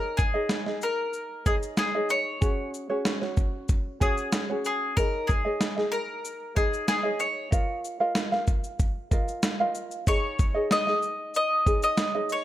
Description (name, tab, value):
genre	acoustic pop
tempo	94 BPM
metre	4/4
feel	straight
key	Db major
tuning	A4 = 440 Hz
part	bowl-back mandolin	melody	0.0-12.4 s	Ab4 to Eb5	-27 LUFS	left 1 dB	none
part	ukulele	accompaniment	0.0-12.4 s	Db4 to F5	-30 LUFS	right 1 dB	none
part	dusty soul sampler-style drum kit	drums	0.2-12.4 s	kick drum, shaker, snare drum	-26 LUFS	equal	none
room	small room reverb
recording	none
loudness	-24 LUFS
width	side -13 dB against mid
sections	0.0-12.4 A section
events	none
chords	0.0 Dbsus2; 2.4 Gbsus2; 5.0 Dbsus2; 7.5 Ebsus2; 10.1 Dbsus2